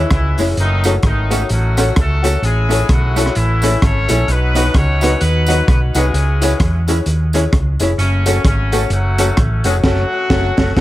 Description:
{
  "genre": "ska",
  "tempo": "129 BPM",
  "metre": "4/4",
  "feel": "swing 60% on 8ths",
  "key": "F# dorian",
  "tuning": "A4 = 441 Hz",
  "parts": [
    { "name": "clear horn section", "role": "melody", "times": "0.0-10.8 s", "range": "C#3 to C#5", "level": "-20 LUFS", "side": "left 1 dB", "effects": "dub echo" },
    { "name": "clear upright piano", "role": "stabs", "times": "0.0-10.8 s", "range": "D#4 to C#5", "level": "-22 LUFS", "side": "left 6 dB", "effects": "dub echo, plate reverb" },
    { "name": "hollow-body short-scale fingered electric bass", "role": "bass", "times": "0.0-10.8 s", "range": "E#1 to E2", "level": "-16 LUFS", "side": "equal", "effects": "none" },
    { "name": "crunchy breakbeat drum kit", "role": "drums", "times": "0.1-10.8 s", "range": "crash cymbal, hi-hat, kick drum, rim click, snare drum", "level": "-17 LUFS", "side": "equal", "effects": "none" },
    { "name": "archtop guitar, miked and amplified", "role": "accompaniment", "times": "0.4-10.8 s", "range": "F#3 to A4", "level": "-23 LUFS", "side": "right 5 dB", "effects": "plate reverb" },
    { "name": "tambourine", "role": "percussion", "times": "0.4-9.7 s", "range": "none", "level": "-30 LUFS", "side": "right 3 dB", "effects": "dub echo" }
  ],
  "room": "light reverb",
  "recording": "none",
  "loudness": "-12 LUFS",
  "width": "side -15 dB against mid",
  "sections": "0.0-10.8 A section",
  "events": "band accent 9.8-10.8",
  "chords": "0.0 C#m; 0.6 F#m; 2.4 A; 4.3 B; 6.1 C#m; 8.0 F#m",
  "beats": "0.11 | 0.57 1.03 1.50 1.96 | 2.42 2.89 3.35 3.81 | 4.28 4.74 5.21 5.67 | 6.13 6.60 7.06 7.53 | 7.99 8.45 8.92 9.38 | 9.84 10.31 10.77"
}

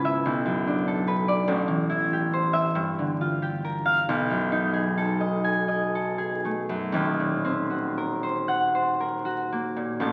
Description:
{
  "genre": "classical, solo harp piece",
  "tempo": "38-50 BPM (dotted quarters)",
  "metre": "6/8",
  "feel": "rubato",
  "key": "unclear",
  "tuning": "A4 = 441 Hz",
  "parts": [
    { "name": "concert harp", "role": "solo", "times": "0.0-10.1 s", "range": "D#1 to A5", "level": "-26 LUFS", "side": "equal", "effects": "none" }
  ],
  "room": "wet concert hall reverb, RT60 1.9 s",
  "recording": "very old 78 rpm record, vinyl crackle",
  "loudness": "-26 LUFS",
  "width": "mono",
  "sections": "0.0-10.0 A section",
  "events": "none",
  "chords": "0.2 Bm7; 1.5 Am7; 2.8 Gm7; 4.1 B6; 6.9 D#m6",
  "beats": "0.24 | 1.47 2.75 | 4.08 5.43 | 6.93 8.48 | 10.00"
}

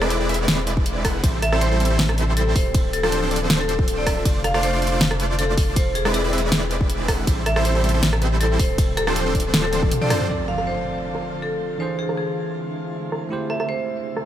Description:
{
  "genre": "future bass",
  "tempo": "159 BPM",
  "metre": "4/4",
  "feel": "swing 53% on 16ths, half-time",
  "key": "unclear",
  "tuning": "A4 = 440 Hz",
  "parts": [
    { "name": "marimba with hard mallets", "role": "melody", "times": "0.0-13.9 s", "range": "G#4 to F5", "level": "-26 LUFS", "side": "left 1 dB", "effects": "sidechain pumping, tape echo" },
    { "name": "shimmering ambient pad", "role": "sustained chords", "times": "0.0-14.3 s", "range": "C3 to G4", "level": "-34 LUFS", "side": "left 1 dB", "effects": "chorus, built-in reverb, vintage 12-bit sampler grit, sidechain pumping" },
    { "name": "supersaw chords", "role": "riff", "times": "0.0-10.3 s", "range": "F3 to Gb5", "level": "-26 LUFS", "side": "right 1 dB", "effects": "sidechain pumping, low-pass filter, digital delay" },
    { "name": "saturated sub bass", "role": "bass", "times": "0.0-9.9 s", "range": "D1 to A1", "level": "-24 LUFS", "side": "equal", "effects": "sidechain pumping" },
    { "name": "pop drum kit", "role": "drums", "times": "0.0-14.2 s", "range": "hi-hat, ride cymbal, rim click, snare drum, toms", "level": "-24 LUFS", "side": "equal", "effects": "low-pass filter on snare, low-pass filter on hats, low-pass filter on cymbals, low-pass filter on toms, low-pass filter on room" },
    { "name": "electronic kick drum", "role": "drums", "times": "0.8-9.9 s", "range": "none", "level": "-21 LUFS", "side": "equal", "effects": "none" },
    { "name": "bell-like tine electric piano", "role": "accompaniment", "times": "10.3-14.3 s", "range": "E3 to D5", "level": "-29 LUFS", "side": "right 4 dB", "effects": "sidechain pumping, digital delay" },
    { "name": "impact", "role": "sound effects", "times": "10.3-11.8 s", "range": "none", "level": "-33 LUFS", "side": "equal", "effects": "none" }
  ],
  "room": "light reverb",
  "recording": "none",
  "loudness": "-18 LUFS",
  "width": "side -11 dB against mid",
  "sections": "0.0-10.3 A section; 10.3-14.3 B section",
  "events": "drop 0.0-10.3; drum fill 9.7-10.3; band accent 10.1; impact 10.3-11.8; filter sweep on ambient pad 10.3-14.3",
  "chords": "0.0 E7b13; 1.2 Am7; 2.6 Dm7; 4.3 F6; 5.8 E7b13; 7.3 Am7; 8.6 Dm7; 11.8 E7b13; 13.3 Am7",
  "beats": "0.10 0.48 0.86 | 1.24 1.61 1.99 2.37 | 2.75 3.12 3.50 3.88 | 4.25 4.63 5.01 5.39 | 5.76 6.14 6.52 6.90 | 7.27 7.65 8.03 8.40 | 8.78 9.16 9.54 9.91 | 10.29 10.67 11.05 11.42 | 11.80 12.18 12.56 12.93 | 13.31 13.69 14.06"
}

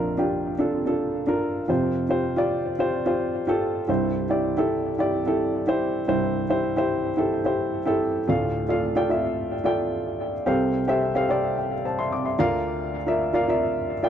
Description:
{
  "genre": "pop",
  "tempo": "109 BPM",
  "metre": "4/4",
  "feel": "straight",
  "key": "F major",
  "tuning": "A4 = 438 Hz",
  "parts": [
    { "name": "dark upright piano", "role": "solo", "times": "0.0-14.1 s", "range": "Bb1 to D6", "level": "-22 LUFS", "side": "equal", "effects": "tape echo" }
  ],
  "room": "moderate booth ambience, RT60 0.2 s",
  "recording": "dry, close 1970s-style studio recording",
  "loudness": "-22 LUFS",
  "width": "side -9 dB against mid",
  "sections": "0.0-8.3 A section; 8.3-14.1 B section",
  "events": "none",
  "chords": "0.0 Bb; 1.7 Fsus2; 3.9 C; 8.3 Dm; 10.5 Fadd9/C; 12.4 Bb/D",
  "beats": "0.04 0.59 1.14 | 1.69 2.24 2.79 3.34 | 3.89 4.44 4.99 5.54 | 6.08 6.63 7.18 7.73 | 8.28 8.82 9.37 9.92 | 10.47 11.02 11.57 12.11 | 12.66 13.21 13.76"
}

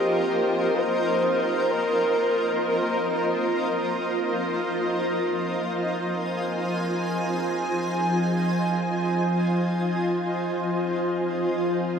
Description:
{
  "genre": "ambient",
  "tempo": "free time",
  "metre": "none",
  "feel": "none",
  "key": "F minor",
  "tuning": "A4 = 440 Hz",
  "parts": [
    { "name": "breathy flute-like synth lead", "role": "melody", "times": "0.0-3.2 s", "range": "G4 to C5", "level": "-28 LUFS", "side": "equal", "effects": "wide subtle chorus, diffuse ambient delay" },
    { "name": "granular cloud pad", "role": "sustained chords", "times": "0.0-12.0 s", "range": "F4 to Ab5", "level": "-24 LUFS", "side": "equal", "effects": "built-in reverb" },
    { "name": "analog drone", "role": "drone", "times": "5.5-12.0 s", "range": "F3", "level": "-28 LUFS", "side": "equal", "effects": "chorus" }
  ],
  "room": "wet shimmer reverb, RT60 8.2 s",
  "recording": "dark, warm production",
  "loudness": "-22 LUFS",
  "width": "side -7 dB against mid",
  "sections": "0.0-12.0 A section",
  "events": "none",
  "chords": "0.0 Cm7/F; 3.6 Fm7; 11.2 Cm7/F",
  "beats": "free time"
}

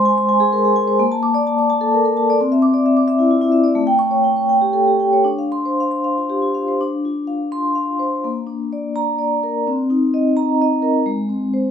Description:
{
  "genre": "classical, contemporary piece for solo vibraphone",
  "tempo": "85 BPM (dotted quarters)",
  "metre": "6/8",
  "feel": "rubato",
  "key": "D minor",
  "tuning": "A4 = 441 Hz",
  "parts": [
    { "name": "vibraphone with soft mallets", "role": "solo", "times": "0.0-11.7 s", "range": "G#3 to D6", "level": "-15 LUFS", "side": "left 1 dB", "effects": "none" }
  ],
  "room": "moderate stone room reverb, RT60 1.1 s",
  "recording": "none",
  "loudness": "-15 LUFS",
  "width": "side -8 dB against mid",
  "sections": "0.0-6.8 A section; 6.8-11.7 B section",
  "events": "none",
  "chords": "0.0 G#add9; 1.0 Bbmaj7; 2.4 Cadd9; 3.8 A7; 5.3 Dm7; 8.2 Bb; 9.7 Cm7; 11.1 G#",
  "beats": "0.29 | 0.99 1.69 | 2.38 3.07 | 3.77 4.49 | 5.26 6.05 | 6.81 7.53 | 8.25 8.97 | 9.67 10.37 | 11.08"
}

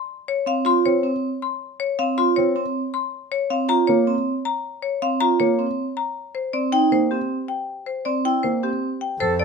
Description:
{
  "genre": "classical, minimalist pattern music",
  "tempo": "158 BPM",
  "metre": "4/4",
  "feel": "straight",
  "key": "unclear",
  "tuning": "A4 = 440 Hz",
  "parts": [
    { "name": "marimba with hard mallets", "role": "melody", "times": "0.0-9.4 s", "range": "G4 to C6", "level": "-23 LUFS", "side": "left 7 dB", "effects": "none" },
    { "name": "vibraphone with medium hard mallets", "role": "arpeggios", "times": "0.5-9.4 s", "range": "C4 to A4", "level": "-22 LUFS", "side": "right 6 dB", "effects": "none" },
    { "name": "dark baby grand piano", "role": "accompaniment", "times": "0.9-8.7 s", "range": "Bb3 to C4", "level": "-25 LUFS", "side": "right 2 dB", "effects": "none" },
    { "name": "warm oboe", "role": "second line", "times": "9.2-9.4 s", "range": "A4", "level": "-24 LUFS", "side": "right 4 dB", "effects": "none" },
    { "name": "rich studio double bass section", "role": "bass", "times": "9.2-9.4 s", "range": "F2", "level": "-25 LUFS", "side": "right 2 dB", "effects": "none" }
  ],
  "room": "light reverb",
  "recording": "none",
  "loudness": "-20 LUFS",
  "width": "side -5 dB against mid",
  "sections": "0.0-9.2 A section",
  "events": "none",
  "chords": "0.1 Dbmaj7/C; 3.1 Bbmadd9; 6.2 Eb6; 7.7 C7",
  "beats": "| 0.09 0.47 0.85 1.23 | 1.61 1.99 2.37 2.75 | 3.13 3.51 3.89 4.27 | 4.65 5.03 5.41 5.79 | 6.17 6.55 6.92 7.30 | 7.68 8.06 8.44 8.82 | 9.20"
}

